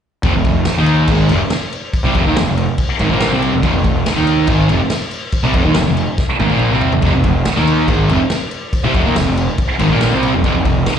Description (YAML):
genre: garage rock duo or trio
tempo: 141 BPM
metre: 4/4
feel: straight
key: unclear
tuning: A4 = 439 Hz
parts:
  - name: fuzz guitar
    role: riff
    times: 0.2-11.0 s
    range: F2 to Eb4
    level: -15 LUFS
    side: equal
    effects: distortion, slapback echo
  - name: fuzz picked electric bass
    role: bass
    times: 0.2-10.9 s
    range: F1 to Eb2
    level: -17 LUFS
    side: equal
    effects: overdrive
  - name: vintage drum kit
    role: drums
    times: 0.2-11.0 s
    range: crash cymbal, kick drum, snare drum, toms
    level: -19 LUFS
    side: equal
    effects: none
room: small room ambience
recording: live gig heard through the venue's PA, club reverb, nothing above 10.9 kHz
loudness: -12 LUFS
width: side -8 dB against mid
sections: 0.2-11.0 A section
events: drum fill 6.2-7.0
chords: 0.2 F5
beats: | 0.24 0.66 1.09 1.51 | 1.94 2.36 2.79 3.21 | 3.63 4.06 4.48 4.91 | 5.33 5.76 6.18 6.61 | 7.03 7.46 7.88 8.31 | 8.73 9.16 9.59 10.01 | 10.44 10.87